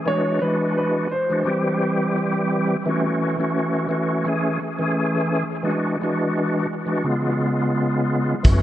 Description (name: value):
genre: hip hop, boom-bap hip-hop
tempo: 86 BPM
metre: 4/4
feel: swing 56% on 16ths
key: unclear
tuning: A4 = 439 Hz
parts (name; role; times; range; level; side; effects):
- warm upright piano; melody; 0.1-2.3 s; B4 to C#5; -24 LUFS; equal; high-pass filter, low-pass filter, analog delay
- bright tonewheel organ; accompaniment; 0.1-8.6 s; C#3 to G#4; -20 LUFS; equal; chorus vibrato, fast rotary speaker, cassette tape, high-pass filter, low-pass filter, analog delay
- raw garage drum kit; drums; 8.4-8.6 s; hi-hat, kick drum; -14 LUFS; equal; none
- upright bass; bass; 8.5-8.6 s; F#1; -19 LUFS; equal; none
room: light reverb, small room ambience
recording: echo-heavy mix, nothing above 10.6 kHz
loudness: -19 LUFS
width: side -13 dB against mid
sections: 0.0-8.4 A section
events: none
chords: 0.1 E9; 1.5 C; 2.9 F#m7; 4.3 Amaj7; 5.7 E9; 7.1 C#7